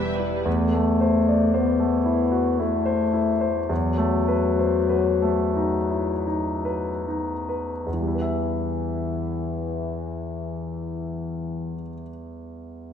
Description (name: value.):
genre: classical, romantic movement for piano and orchestra.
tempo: 35-58 BPM.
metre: 3/4.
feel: rubato.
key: E minor.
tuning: A4 = 440 Hz.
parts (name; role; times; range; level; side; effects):
clear concert grand piano; melody; 0.0-12.9 s; E2 to E5; -25 LUFS; equal; none.
warm symphonic violin section; melody; 0.0-0.5 s; B4 to E5; -36 LUFS; left 2 dB; none.
rich symphonic viola section; accompaniment; 0.0-0.5 s; E3 to G4; -35 LUFS; right 2 dB; none.
mellow French horn section; sustained chords; 0.0-11.7 s; E3 to B3; -24 LUFS; left 4 dB; none.
room: wet scoring stage reverb, RT60 1.6 s.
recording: minimal, uncompressed stereo recording.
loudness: -21 LUFS.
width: side -8 dB against mid.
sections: 0.5-7.9 A section; 7.9-12.1 B section.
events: slowing down 0.0-7.9.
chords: 0.5 Am/E; 3.7 B7/E; 7.9 Em.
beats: | 0.46 1.54 2.59 | 3.70 4.91 6.27 | 7.86 9.28 10.69.